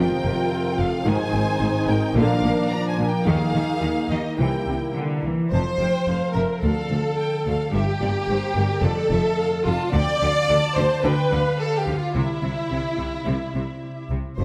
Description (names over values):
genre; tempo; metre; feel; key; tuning
cinematic; 108 BPM; 4/4; straight; F major from 5.5 s; A4 = 445 Hz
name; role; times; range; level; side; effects
rich symphonic violin section; melody; 0.0-14.1 s; Bb4 to Bb5; -34 LUFS; equal; none
warm symphonic violin section; second line; 0.0-14.4 s; E4 to D5; -30 LUFS; equal; none
warm symphonic viola section; accompaniment; 0.0-14.4 s; D3 to D5; -30 LUFS; equal; none
bright trombone section; sustained chords; 0.0-5.2 s; C3 to C4; -31 LUFS; equal; none
dark French horn section; sustained chords; 0.0-5.2 s; Bb3 to F4; -30 LUFS; equal; none
concert harp; arpeggios; 0.0-14.4 s; F2 to G5; -32 LUFS; equal; none
rich symphonic cello section; bass; 0.0-14.4 s; D2 to E3; -29 LUFS; equal; none
rich symphonic double bass section; bass; 0.0-14.4 s; F1 to Eb2; -29 LUFS; equal; none
room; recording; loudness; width
moderate scoring stage reverb, RT60 1.6 s; none; -22 LUFS; mono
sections
0.0-5.5 A section; 5.5-14.4 A section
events
none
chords
0.0 F; 1.1 Ab; 2.2 Bb; 3.3 Eb; 4.4 C7; 5.5 F; 6.6 Dm; 7.7 Gm; 8.8 F; 9.9 Dm; 11.0 G/D; 12.1 C